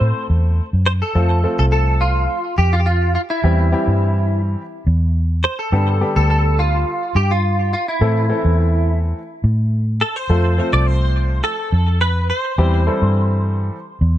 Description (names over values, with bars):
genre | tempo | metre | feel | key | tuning
dance-pop | 105 BPM | 4/4 | straight | unclear | A4 = 440 Hz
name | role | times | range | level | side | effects
direct-recorded clean electric guitar | melody | 0.0-14.2 s | E4 to D5 | -21 LUFS | right 1 dB | ensemble chorus, digital delay
warm baby grand piano | accompaniment | 0.0-13.8 s | D3 to A4 | -23 LUFS | left 2 dB | none
vintage muted fingered electric bass | bass | 0.0-14.2 s | C2 to A2 | -16 LUFS | equal | none
room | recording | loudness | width
studio ambience | none | -15 LUFS | side -12 dB against mid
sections
0.0-1.2 A section; 1.2-14.2 B section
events
none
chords
0.0 Am; 1.2 F; 3.4 C/E; 5.7 G; 8.0 Am; 10.3 F; 12.6 C/E